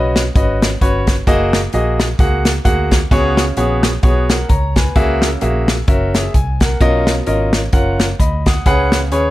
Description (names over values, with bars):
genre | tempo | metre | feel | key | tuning
uptempo gospel | 130 BPM | 4/4 | swing 58% on 8ths | F# major | A4 = 440 Hz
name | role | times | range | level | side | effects
clear grand piano | accompaniment | 0.0-9.3 s | B2 to D#6 | -17 LUFS | equal | none
vintage muted fingered electric bass | bass | 0.0-9.3 s | F#1 to D#2 | -19 LUFS | equal | none
natural country drum kit | drums | 0.2-9.2 s | hi-hat, kick drum, snare drum | -15 LUFS | equal | none
room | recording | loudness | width
small room ambience | dark, warm production | -12 LUFS | side -16 dB against mid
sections
0.0-9.3 A section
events
none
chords
0.0 C#9sus4; 1.3 F#69; 3.1 C#7sus4; 5.0 F#9/C#; 5.9 F#7; 6.8 Bmaj9#11; 8.7 C#7sus4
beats
0.35 0.81 | 1.27 1.73 2.19 2.65 | 3.11 3.57 4.03 4.49 | 4.96 5.42 5.88 6.34 | 6.80 7.27 7.73 8.19 | 8.66 9.12